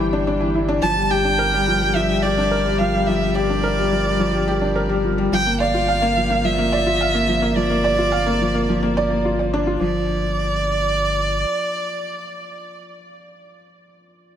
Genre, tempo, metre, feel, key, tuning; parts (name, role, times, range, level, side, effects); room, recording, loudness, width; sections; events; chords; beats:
piano and strings electronica; 107 BPM; 4/4; straight; A4 = 440 Hz
felt-muted upright piano; riff; 0.0-14.4 s; E3 to F5; -20 LUFS; left 1 dB; digital delay
round analog bass; bass; 0.0-11.4 s; G1; -25 LUFS; right 1 dB
dark violin; melody; 0.8-12.8 s; D5 to A5; -22 LUFS; right 2 dB; digital delay
moderate huge ambient reverb, RT60 5.3 s; -17 LUFS; side -9 dB against mid
0.0-9.8 A section; 9.8-12.0 B section
drop 0.0-9.8
0.0 Cadd9/G; 0.8 Gm7; 9.8 G5
0.27 | 0.83 1.39 1.95 2.51 | 3.07 3.63 4.20 4.76 | 5.32 5.88 6.44 7.00 | 7.56 8.12 8.68 9.24 | 9.80 10.36 10.93 11.48